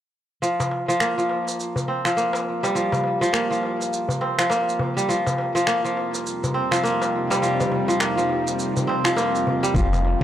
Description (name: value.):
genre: organic downtempo.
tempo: 103 BPM.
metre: 4/4.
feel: swing 60% on 16ths.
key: unclear.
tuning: A4 = 440 Hz.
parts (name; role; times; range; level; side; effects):
kora; arpeggios; 0.4-10.2 s; F3 to C4; -21 LUFS; equal; low-pass filter, tape echo.
electronic shaker and finger snaps; drums; 0.4-10.0 s; none; -27 LUFS; right 1 dB; none.
darbuka; percussion; 0.6-10.2 s; none; -29 LUFS; left 1 dB; none.
bowed-like drone; sustained chords; 5.9-10.2 s; F2 to Eb4; -28 LUFS; left 1 dB; built-in reverb, sidechain pumping.
woody FM bass; bass; 9.7-10.2 s; F1; -21 LUFS; equal; sidechain pumping.
electronic kick drum; drums; 9.7-10.2 s; none; -22 LUFS; equal; none.
room: light reverb.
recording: dry, gritty hardware recording, transformer saturation.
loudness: -20 LUFS.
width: side -11 dB against mid.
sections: 0.4-9.7 A section.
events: none.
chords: 0.4 F5; 5.1 Cm7/F.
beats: | 0.43 1.01 1.59 2.17 | 2.76 3.34 3.92 4.50 | 5.09 5.67 6.25 6.84 | 7.42 8.00 8.58 9.17 | 9.75.